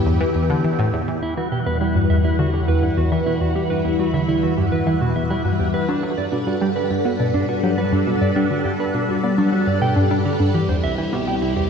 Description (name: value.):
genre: ambient, sequencer-driven space music.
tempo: 103 BPM.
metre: 4/4.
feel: straight.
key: E minor.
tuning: A4 = 435 Hz.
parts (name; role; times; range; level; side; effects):
phased string machine; sustained chords; 0.0-11.7 s; E3 to F#5; -22 LUFS; left 1 dB; ensemble chorus, phaser.
analog pluck; riff; 0.0-11.7 s; C2 to B3; -21 LUFS; equal; chorus, phaser, analog delay.
analog drone; bass; 0.0-11.7 s; C2 to G2; -26 LUFS; equal; chorus, phaser.
mellow electric guitar; arpeggios; 1.2-11.7 s; D4 to G5; -24 LUFS; right 2 dB; auto-pan, analog delay.
room: wet lush hall reverb, RT60 3.1 s.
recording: dark, warm production.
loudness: -17 LUFS.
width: side -6 dB against mid.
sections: 0.0-1.2 A section; 1.2-11.7 B section.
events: none.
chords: 0.0 Em; 1.2 Emadd9; 5.9 Gmaj7; 10.5 C.